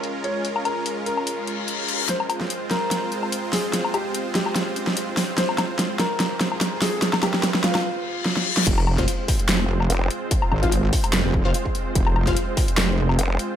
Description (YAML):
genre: heavy wobble dubstep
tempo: 146 BPM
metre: 4/4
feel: swing 54% on 16ths, half-time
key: F minor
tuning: A4 = 439 Hz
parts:
  - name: warm concert grand piano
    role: melody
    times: 0.0-8.6 s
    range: F4 to Eb5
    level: -28 LUFS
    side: left 2 dB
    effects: dub echo
  - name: supersaw pad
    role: sustained chords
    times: 0.0-13.6 s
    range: Ab3 to C5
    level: -29 LUFS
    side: right 2 dB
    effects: sidechain pumping, low-pass filter
  - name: dubstep drum kit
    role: drums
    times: 0.0-13.5 s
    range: crash cymbal, handclaps, hi-hat, snare drum, woodblock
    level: -23 LUFS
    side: equal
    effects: studio reverb
  - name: reverse cymbal and riser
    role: sound effects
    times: 1.4-8.7 s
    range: none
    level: -29 LUFS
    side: left 4 dB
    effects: none
  - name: wobble bass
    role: bass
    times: 8.7-13.2 s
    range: F1 to Ab1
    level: -21 LUFS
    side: equal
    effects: chorus, overdrive
  - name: electronic kick drum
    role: drums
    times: 8.7-12.7 s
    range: none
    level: -23 LUFS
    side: equal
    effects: distortion, studio reverb
  - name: orchestra-hit-like synth stab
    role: stabs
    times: 9.0-12.3 s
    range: F4 to F5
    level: -29 LUFS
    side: left 4 dB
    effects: built-in reverb, cassette tape, dub echo
  - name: vowel-sweep wobble bass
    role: bass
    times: 9.9-10.1, 13.2-13.4 s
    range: F1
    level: -21 LUFS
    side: equal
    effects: chorus, overdrive
room: light reverb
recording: low-pass filter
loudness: -20 LUFS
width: side -10 dB against mid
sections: 0.0-2.1 A section; 2.1-8.7 B section; 8.7-13.6 C section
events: filter sweep 0.0-2.1; reverse cymbal 1.4-2.1, 7.8-8.7; build-up 2.1-8.7; drum fill 2.1-7.8, 8.3-8.7; break 7.8-8.7; drop 8.7-13.6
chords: 0.0 Bbm7; 2.1 Fm